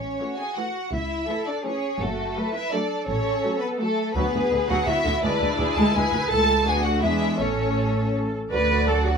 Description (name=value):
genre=quick classical-period movement for string orchestra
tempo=167 BPM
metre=3/4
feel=straight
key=A major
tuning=A4 = 440 Hz
part: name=rich studio violin section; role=melody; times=0.0-9.2 s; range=A4 to A5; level=-27 LUFS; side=left 2 dB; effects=none
part: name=dark studio violin section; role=second line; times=0.0-9.2 s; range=A3 to D5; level=-28 LUFS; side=left 1 dB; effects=none
part: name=rich studio double bass section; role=bass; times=0.0-9.2 s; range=F#1 to E2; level=-27 LUFS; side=right 1 dB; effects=none
part: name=warm studio viola section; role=accompaniment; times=0.2-9.2 s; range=D3 to F#4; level=-27 LUFS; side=equal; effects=none
part: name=rich studio cello section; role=bass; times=0.2-9.2 s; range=E4 to B4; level=-28 LUFS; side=right 2 dB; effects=none
room=light reverb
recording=minimal, uncompressed stereo recording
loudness=-21 LUFS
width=side -6 dB against mid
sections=0.0-8.5 A section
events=none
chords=0.0 A; 0.9 A/C#; 2.0 F#m; 3.1 F#m/A; 4.2 Bm/D; 5.2 E7/D; 6.3 A/C#; 6.7 Bm/D; 7.0 E7; 7.4 A; 8.5 D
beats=0.21 0.57 | 0.93 1.29 1.66 | 2.02 2.37 2.73 | 3.09 3.44 3.80 | 4.16 4.52 4.87 | 5.23 5.59 5.95 | 6.31 6.67 7.03 | 7.40 7.77 8.14 | 8.52 8.88